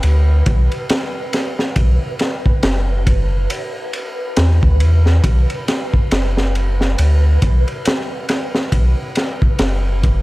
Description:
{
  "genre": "trip hop",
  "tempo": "69 BPM",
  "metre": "4/4",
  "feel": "swing 58% on 16ths",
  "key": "B minor",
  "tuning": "A4 = 441 Hz",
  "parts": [
    { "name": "warm sub bass", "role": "bass", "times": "0.0-10.2 s", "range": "F#1 to E2", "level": "-14 LUFS", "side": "equal", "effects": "none" },
    { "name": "crunchy breakbeat drum kit", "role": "drums", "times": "0.0-10.2 s", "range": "kick drum, ride cymbal, snare drum", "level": "-18 LUFS", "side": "equal", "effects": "none" },
    { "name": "flickering grainy texture", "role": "texture", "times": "0.0-10.2 s", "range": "B4", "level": "-28 LUFS", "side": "right 1 dB", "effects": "built-in reverb" }
  ],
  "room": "little or no reverb",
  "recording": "none",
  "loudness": "-14 LUFS",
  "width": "side -19 dB against mid",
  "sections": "0.0-10.2 A section",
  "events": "none",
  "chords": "0.0 N.C.; 5.2 B5",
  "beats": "0.03 0.90 | 1.77 2.64 3.51 4.38 | 5.25 6.12 6.99 7.86 | 8.73 9.60"
}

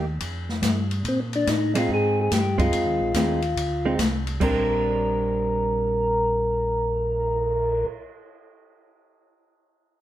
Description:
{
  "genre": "soul jazz organ trio",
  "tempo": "143 BPM",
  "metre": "4/4",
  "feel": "swing 66% on 8ths",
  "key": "Bb mixolydian",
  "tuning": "A4 = 439 Hz",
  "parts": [
    { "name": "hollow-body jazz guitar", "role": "accompaniment", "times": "0.0-7.9 s", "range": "G3 to Eb4", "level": "-28 LUFS", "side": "right 4 dB", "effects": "none" },
    { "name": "mellow tonewheel organ", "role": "bass", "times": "0.0-7.8 s", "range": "Bb1 to Bb2", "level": "-28 LUFS", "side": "equal", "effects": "slow rotary speaker" },
    { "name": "open jazz drum kit", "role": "drums", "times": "0.2-7.7 s", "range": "crash cymbal, cymbal swell, hi-hat, kick drum, ride cymbal, snare drum", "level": "-28 LUFS", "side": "left 1 dB", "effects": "none" },
    { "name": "percussive tonewheel organ", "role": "melody", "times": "1.1-7.9 s", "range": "C4 to Bb4", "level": "-23 LUFS", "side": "left 1 dB", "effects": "slow rotary speaker" }
  ],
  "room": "moderate studio reverb, RT60 0.7 s",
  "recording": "band playing live in one room",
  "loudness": "-21 LUFS",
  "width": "side -13 dB against mid",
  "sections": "0.0-4.4 A section; 4.4-7.8 B section",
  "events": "none",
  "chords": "0.2 Fsus2; 1.1 Bb9sus4; 4.4 Bb69",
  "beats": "0.21 0.63 | 1.05 1.47 1.89 2.31 | 2.73 3.15 3.57 3.98 | 4.41 4.82 5.24 5.66 | 6.08 6.50 6.92 7.34"
}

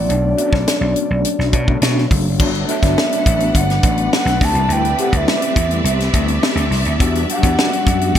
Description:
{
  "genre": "polished 1980s jazz-funk pop",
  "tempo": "104 BPM",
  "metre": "4/4",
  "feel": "straight",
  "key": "unclear",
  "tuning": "A4 = 440 Hz",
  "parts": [
    { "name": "alto ocarina", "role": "melody", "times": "0.0-8.2 s", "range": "D5 to A5", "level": "-21 LUFS", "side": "right 2 dB", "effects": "ping-pong delay" },
    { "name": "overdriven tine electric piano", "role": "accompaniment", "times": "0.0-8.2 s", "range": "F#3 to G4", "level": "-21 LUFS", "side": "left 2 dB", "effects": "medium tremolo, ensemble chorus" },
    { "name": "vintage slap bass", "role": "bass", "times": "0.0-8.2 s", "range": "F#1 to B2", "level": "-18 LUFS", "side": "equal", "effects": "none" },
    { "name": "tight funk drum kit", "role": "drums", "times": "0.1-8.2 s", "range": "crash cymbal, hi-hat, kick drum, snare drum", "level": "-18 LUFS", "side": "equal", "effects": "gated reverb" },
    { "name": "warm studio string section", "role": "sustained chords", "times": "2.4-8.2 s", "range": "G3 to F#5", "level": "-24 LUFS", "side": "equal", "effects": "none" }
  ],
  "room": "moderate plate reverb, RT60 1.5 s, small room ambience",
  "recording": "bright 1980s-style digital production",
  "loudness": "-14 LUFS",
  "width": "side -10 dB against mid",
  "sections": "0.0-2.4 A section; 2.4-8.2 B section",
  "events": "none",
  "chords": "0.1 Bm7; 2.4 Gmaj7; 4.4 D9sus4; 7.0 Em9",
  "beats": "| 0.09 0.67 1.24 1.82 | 2.40 2.97 3.55 4.12 | 4.70 5.28 5.85 6.43 | 7.00 7.58 8.15"
}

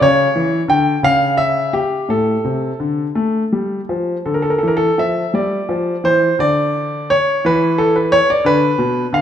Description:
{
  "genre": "classical, baroque-style suite movement for grand piano",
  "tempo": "57 BPM (dotted quarters)",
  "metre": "6/8",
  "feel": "uneven beats, rubato",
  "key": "unclear",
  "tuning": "A4 = 441 Hz",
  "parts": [
    { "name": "warm grand piano", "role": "solo", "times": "0.0-9.2 s", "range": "A2 to G5", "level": "-14 LUFS", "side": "equal", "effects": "none" }
  ],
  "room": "wet recital hall reverb, RT60 1.7 s",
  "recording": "dark, warm production",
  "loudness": "-14 LUFS",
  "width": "side -9 dB against mid",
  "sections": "0.0-9.2 A section",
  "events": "none",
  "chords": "0.0 C#dim; 2.1 Asus4; 3.2 Fadd9; 4.3 Dm; 6.4 Bmadd9/D; 8.5 Bm",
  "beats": "| 0.03 1.03 | 2.09 3.17 | 4.26 5.33 | 6.39 7.44 | 8.45"
}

